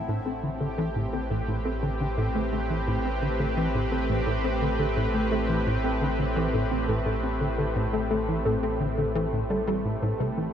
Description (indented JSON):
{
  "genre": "ambient, sequencer-driven space music",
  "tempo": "86 BPM",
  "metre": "4/4",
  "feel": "straight",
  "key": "A minor",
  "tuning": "A4 = 440 Hz",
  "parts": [
    { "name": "lush unison pad", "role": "sustained chords", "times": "0.0-10.5 s", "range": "A2 to B4", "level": "-29 LUFS", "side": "equal", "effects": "chorus" },
    { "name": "tight sequencer bass", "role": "riff", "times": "0.0-10.5 s", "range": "A2 to C4", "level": "-29 LUFS", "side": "equal", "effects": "ensemble chorus, ping-pong delay" },
    { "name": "warm sub bass", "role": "bass", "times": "0.0-10.5 s", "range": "A1", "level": "-32 LUFS", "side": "equal", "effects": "none" },
    { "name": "pulsing gated texture", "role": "texture", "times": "0.0-10.5 s", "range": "C4", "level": "-43 LUFS", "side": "left 3 dB", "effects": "none" },
    { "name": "warbly dusty pluck", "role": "arpeggios", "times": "0.1-10.3 s", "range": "A4", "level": "-34 LUFS", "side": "left 2 dB", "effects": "chorus, auto-pan, ping-pong delay" }
  ],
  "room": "moderate huge ambient reverb, RT60 7.8 s",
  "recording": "none",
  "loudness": "-24 LUFS",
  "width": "side -9 dB against mid",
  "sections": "0.0-10.5 A section",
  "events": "none",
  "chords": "0.0 Am7"
}